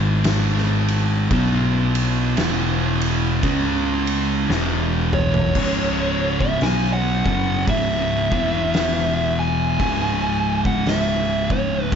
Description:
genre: stoner and doom metal.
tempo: 57 BPM.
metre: 4/4.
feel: swing 60% on 8ths.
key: C# minor.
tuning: A4 = 440 Hz.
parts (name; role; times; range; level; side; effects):
thick fuzz guitar; riff; 0.0-12.0 s; C#2 to C#4; -24 LUFS; left 12 dB; distortion.
thick fuzz guitar; riff; 0.0-12.0 s; C#2 to C#4; -23 LUFS; right 9 dB; distortion.
picked electric bass; bass; 0.0-12.0 s; C#1 to C#2; -25 LUFS; equal; overdrive.
oversized low-tuned drum kit; drums; 0.2-12.0 s; crash cymbal, hi-hat, kick drum, ride cymbal, snare drum, toms; -24 LUFS; equal; none.
fuzz lead guitar; melody; 5.1-11.9 s; C#5 to G#5; -23 LUFS; equal; distortion, ping-pong delay.
room: little or no reverb.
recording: nothing above 7.7 kHz.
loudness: -18 LUFS.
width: side -7 dB against mid.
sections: 0.0-5.6 A section; 5.6-12.0 B section.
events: drum fill 4.5-5.6.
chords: 0.0 G#5; 1.3 B5; 2.4 E5; 3.4 C#5; 4.5 E5; 5.6 C#5; 8.2 E5; 9.8 C#5.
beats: 0.25 | 1.31 2.37 3.43 4.49 | 5.55 6.61 7.67 8.74 | 9.80 10.86 11.93.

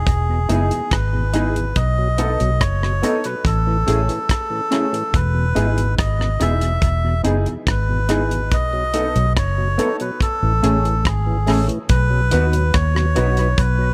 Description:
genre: roots reggae.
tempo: 71 BPM.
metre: 4/4.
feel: straight.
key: E major.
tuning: A4 = 441 Hz.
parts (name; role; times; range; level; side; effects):
melodica; melody; 0.0-13.9 s; G#4 to E5; -26 LUFS; equal; tape echo.
vintage muted fingered electric bass; bass; 0.0-13.9 s; E1 to D#2; -21 LUFS; equal; none.
damped 70s drum kit; drums; 0.1-13.8 s; hi-hat, kick drum, rim click; -23 LUFS; equal; dub echo.
tonewheel organ; accompaniment; 0.3-13.9 s; E2 to G#4; -32 LUFS; equal; overdrive, chorus vibrato, slow rotary speaker.
mellow electric guitar; accompaniment; 0.5-13.5 s; A3 to B4; -29 LUFS; equal; lush chorus, tape echo.
warm upright piano; stabs; 0.5-13.4 s; A3 to A4; -29 LUFS; equal; none.
room: studio reverb.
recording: none.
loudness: -19 LUFS.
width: mono.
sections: 0.0-11.9 A section; 11.9-13.9 B section.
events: none.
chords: 0.0 Emaj7; 1.8 B7; 3.4 Amaj7; 5.1 Emaj7; 8.5 B7; 10.2 Amaj7; 11.9 B.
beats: 0.07 0.91 | 1.76 2.60 3.45 4.29 | 5.14 5.98 6.83 7.67 | 8.52 9.36 10.21 11.05 | 11.89 12.74 13.58.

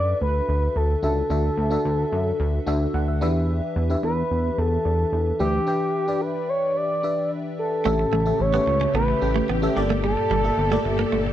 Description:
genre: pop.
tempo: 110 BPM.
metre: 4/4.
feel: straight.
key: D major.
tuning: A4 = 440 Hz.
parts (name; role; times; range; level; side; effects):
expressive synth lead; melody; 0.0-11.3 s; G4 to D5; -24 LUFS; equal; chorus, slapback echo.
FM electric piano with soft pad layer; accompaniment; 0.0-11.3 s; G2 to G5; -26 LUFS; left 2 dB; chorus.
chorused synth bass; bass; 0.0-11.3 s; G1 to F#2; -24 LUFS; equal; none.
string machine, violas; sustained chords; 7.9-11.3 s; Bb2 to A4; -29 LUFS; equal; ensemble chorus.
direct-recorded clean electric guitar; riff; 7.9-11.3 s; G3 to C#4; -27 LUFS; right 7 dB; lush chorus, slapback echo.
room: little or no reverb.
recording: dry, close 1970s-style studio recording.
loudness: -20 LUFS.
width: side -12 dB against mid.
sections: 0.0-7.9 A section; 7.9-11.3 B section.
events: FM electric piano fill 2.7-3.5.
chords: 0.0 Dadd9; 3.2 Em7; 7.9 A7; 9.8 Gmadd9.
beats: 0.22 0.76 | 1.31 1.85 2.40 2.94 | 3.49 4.04 4.58 5.13 | 5.67 6.22 6.76 7.31 | 7.85 8.40 8.94 9.49 | 10.04 10.58 11.13.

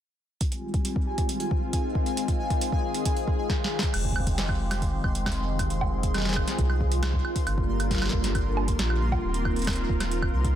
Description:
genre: IDM.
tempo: 136 BPM.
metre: 4/4.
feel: straight.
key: F dorian.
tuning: A4 = 438 Hz.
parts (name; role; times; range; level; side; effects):
phased analog pad; sustained chords; 0.4-10.6 s; D3 to Bb4; -30 LUFS; equal; phaser, chorus, sidechain pumping.
booming analog drum machine; drums; 0.4-10.5 s; crash cymbal, hi-hat, snare drum, woodblock; -31 LUFS; right 2 dB; overdrive, digital delay.
electronic kick drum; drums; 0.4-10.5 s; none; -28 LUFS; equal; none.
pulsing gated texture; texture; 0.7-10.6 s; Ab5 to C6; -37 LUFS; left 1 dB; chorus, built-in reverb.
warm sub bass; bass; 3.9-10.5 s; Eb1 to C2; -28 LUFS; equal; none.
room: light reverb.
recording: dense, heavily limited modern master.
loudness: -24 LUFS.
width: side -11 dB against mid.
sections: 0.4-3.9 A section; 3.9-10.6 B section.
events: drum fill 3.5-3.9.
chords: 0.4 Fm9; 7.5 Gm7; 9.2 Ebsus2.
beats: | 0.41 0.85 1.29 1.73 | 2.17 2.61 3.06 3.50 | 3.94 4.38 4.82 5.26 | 5.70 6.14 6.58 7.03 | 7.47 7.91 8.35 8.79 | 9.23 9.67 10.11.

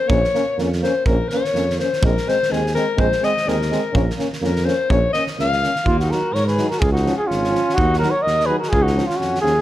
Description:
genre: balkan folk, Balkan brass band.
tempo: 125 BPM.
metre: 2/4.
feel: swing 55% on 16ths.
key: Bb minor, Eb minor from 5.9 s.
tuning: A4 = 440 Hz.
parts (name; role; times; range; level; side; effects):
warm alto saxophone; second line; 0.0-9.6 s; Bb3 to F5; -22 LUFS; left 4 dB; none.
clear euphonium; accompaniment; 0.1-9.5 s; F3 to Bb3; -27 LUFS; right 6 dB; none.
mellow French horn; accompaniment; 0.1-9.5 s; C4 to Eb4; -28 LUFS; left 4 dB; none.
mellow tuba; bass; 0.1-9.6 s; Ab1 to Ab2; -22 LUFS; right 1 dB; none.
loose indie drum kit; percussion; 0.1-9.6 s; kick drum, snare drum; -24 LUFS; right 1 dB; none.
mellow flugelhorn; melody; 5.9-9.6 s; F4 to Eb5; -19 LUFS; right 1 dB; none.
room: moderate recital hall reverb, RT60 1.6 s.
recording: none.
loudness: -16 LUFS.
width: side -14 dB against mid.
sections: 0.0-5.9 A section; 5.9-9.6 B section.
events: alto saxophone solo 0.0-5.9.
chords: 0.0 Bbm; 2.0 Ab/Bb; 3.9 Bbm; 5.9 Ebm; 6.8 Db; 7.8 Ebm; 8.7 Db.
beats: | 0.10 0.58 | 1.06 1.54 | 2.02 2.50 | 2.98 3.46 | 3.94 4.42 | 4.90 5.38 | 5.86 6.34 | 6.82 7.29 | 7.77 8.25 | 8.73 9.20.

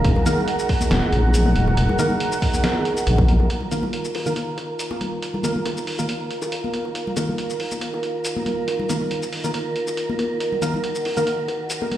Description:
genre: deep dubstep.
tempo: 139 BPM.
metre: 4/4.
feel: swing 53% on 16ths, half-time.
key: Eb minor.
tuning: A4 = 442 Hz.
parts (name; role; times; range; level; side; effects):
dark analog pad; sustained chords; 0.0-12.0 s; Eb4 to Gb5; -26 LUFS; right 1 dB; chorus.
deep soft wobble bass; bass; 0.0-3.5 s; Eb1 to Bb1; -17 LUFS; equal; chorus.
electronic kick drum; drums; 0.0-3.3 s; none; -20 LUFS; equal; overdrive, studio reverb.
trip hop sampler-style drum kit; drums; 0.0-12.0 s; hi-hat, shaker, snare drum; -29 LUFS; equal; studio reverb.
wind-like tuned noise texture; texture; 0.0-12.0 s; Bb4; -30 LUFS; right 5 dB; built-in reverb.
congas and bongos; percussion; 0.2-12.0 s; none; -28 LUFS; left 2 dB; dub echo.
percussive organ stab; stabs; 0.3-11.2 s; Eb3 to Bb4; -28 LUFS; right 1 dB; analog chorus, dub echo.
room: moderate spring reverb, RT60 1.9 s, digital ambience.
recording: played on a big sound system in a bare room, stone room reverb.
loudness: -20 LUFS.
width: side -12 dB against mid.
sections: 0.0-3.5 A section; 3.5-12.0 B section.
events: drop 0.0-3.5; filter sweep on synth stab 3.5-12.0.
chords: 0.0 Eb5.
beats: | 0.05 0.48 0.91 1.34 | 1.77 2.20 2.64 3.07 | 3.50 3.93 4.36 4.79 | 5.23 5.66 6.09 6.52 | 6.95 7.38 7.82 8.25 | 8.68 9.11 9.54 9.97 | 10.41 10.84 11.27 11.70.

